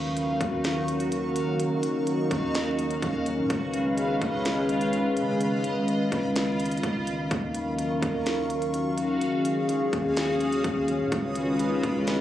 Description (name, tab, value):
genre	hip hop, atmospheric cloud-rap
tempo	126 BPM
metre	4/4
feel	half-time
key	Eb minor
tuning	A4 = 436 Hz
part	dark analog pad	sustained chords	0.0-12.2 s	Eb3 to F5	-25 LUFS	equal	chorus, sidechain pumping
part	soft 808-style bass	bass	0.0-12.2 s	Db2 to Db3	-38 LUFS	equal	none
part	backwards swelling texture	texture	0.0-12.2 s	F4 to Eb6	-35 LUFS	equal	built-in reverb
part	trap drum kit	drums	0.2-12.2 s	hi-hat, kick drum, snare drum	-31 LUFS	equal	vintage 12-bit sampler grit
room	little or no reverb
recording	recorded on a phone in the room, club reverb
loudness	-24 LUFS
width	side -12 dB against mid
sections	0.0-12.2 A section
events	none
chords	0.0 Ebm9; 3.5 Db9; 7.3 Ebm9; 11.1 Db9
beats	0.17 0.64 1.12 | 1.60 2.07 2.55 3.02 | 3.50 3.98 4.45 4.93 | 5.41 5.88 6.36 6.83 | 7.31 7.79 8.26 8.74 | 9.21 9.69 10.17 10.64 | 11.12 11.60 12.07